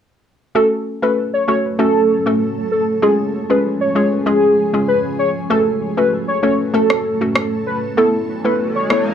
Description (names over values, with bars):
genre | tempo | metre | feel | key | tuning
dancehall | 97 BPM | 4/4 | straight | F# minor | A4 = 440 Hz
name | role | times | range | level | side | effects
hollow square pluck | accompaniment | 0.5-9.1 s | G#3 to A4 | -19 LUFS | left 2 dB | chorus
warm velvety synth lead | melody | 0.6-9.0 s | G#4 to C#5 | -17 LUFS | right 1 dB | chorus, digital delay
granular cloud pad | sustained chords | 1.4-9.1 s | E3 to A4 | -23 LUFS | right 1 dB | built-in reverb
electronic rim click | drums | 6.9-9.1 s | none | -17 LUFS | equal | none
riser | sound effects | 8.4-9.1 s | none | -26 LUFS | equal | none
room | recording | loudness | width
moderate studio reverb, RT60 0.5 s | dark, warm production | -14 LUFS | side -8 dB against mid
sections
0.6-9.1 A section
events
riser 8.4-9.1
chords
0.6 F#m; 3.0 C#; 5.5 F#m; 8.0 Esus4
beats
| 0.55 1.17 1.79 2.41 | 3.03 3.65 4.26 4.88 | 5.50 6.12 6.74 7.36 | 7.97 8.59